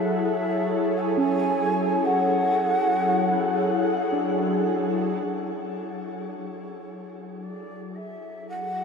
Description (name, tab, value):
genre	ambient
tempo	56 BPM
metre	3/4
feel	straight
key	unclear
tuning	A4 = 439 Hz
part	breathy mellow shakuhachi	melody	0.0-8.8 s	C#5 to G#5	-27 LUFS	equal	shimmer reverb, ping-pong delay
part	warm analog pad	sustained chords	0.0-8.8 s	F#3 to C#5	-25 LUFS	left 1 dB	chorus, shimmer reverb
part	muted felt-like synth keys	arpeggios	1.2-5.5 s	C#4 to E4	-31 LUFS	right 1 dB	chorus, phaser, shimmer reverb, ping-pong delay
room	wet huge ambient reverb, RT60 8.2 s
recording	none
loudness	-22 LUFS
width	side -5 dB against mid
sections	0.0-5.3 A section; 5.3-8.8 B section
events	fade-in on analog synth pad 5.3-8.8; fade-in on shakuhachi 5.3-8.8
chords	0.0 Dmaj9#11/F#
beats	0.98 | 2.05 3.12 4.20 | 5.28 6.36 7.43 | 8.49